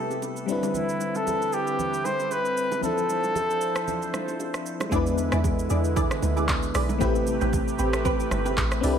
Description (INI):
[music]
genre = amapiano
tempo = 115 BPM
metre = 4/4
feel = swing 55% on 16ths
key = A minor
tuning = A4 = 440 Hz
[part]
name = trumpet with bucket mute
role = melody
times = 0.0-4.4 s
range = E4 to C5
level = -27 LUFS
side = equal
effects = diffuse ambient delay
[part]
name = FM electric piano with auto-pan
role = accompaniment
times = 0.0-9.0 s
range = F3 to B4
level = -29 LUFS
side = left 4 dB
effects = none
[part]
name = warm analog pad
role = sustained chords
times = 0.0-9.0 s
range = C3 to C5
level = -32 LUFS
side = right 2 dB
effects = chorus
[part]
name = afro-pop drum kit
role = drums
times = 0.1-9.0 s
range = handclaps, hi-hat, kick drum, rim click, shaker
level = -29 LUFS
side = right 1 dB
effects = none
[part]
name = bongos and congas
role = percussion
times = 0.1-8.7 s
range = none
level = -36 LUFS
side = right 7 dB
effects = none
[part]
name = punchy chord stab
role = stabs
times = 4.9-9.0 s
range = C4 to D5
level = -30 LUFS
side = right 3 dB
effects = chorus, phaser, diffuse ambient delay
[part]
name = deep log drum bass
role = bass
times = 4.9-9.0 s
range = G1 to E2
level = -27 LUFS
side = equal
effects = none
[sound]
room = moderate plate reverb, RT60 1.4 s, digital ambience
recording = dreamy mix soaked in reverb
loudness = -23 LUFS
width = side -8 dB against mid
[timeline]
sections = 0.0-4.9 A section; 4.9-9.0 B section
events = drop 4.9-9.0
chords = 0.5 Cmaj9; 2.8 Dm9; 4.9 E7; 7.0 Am9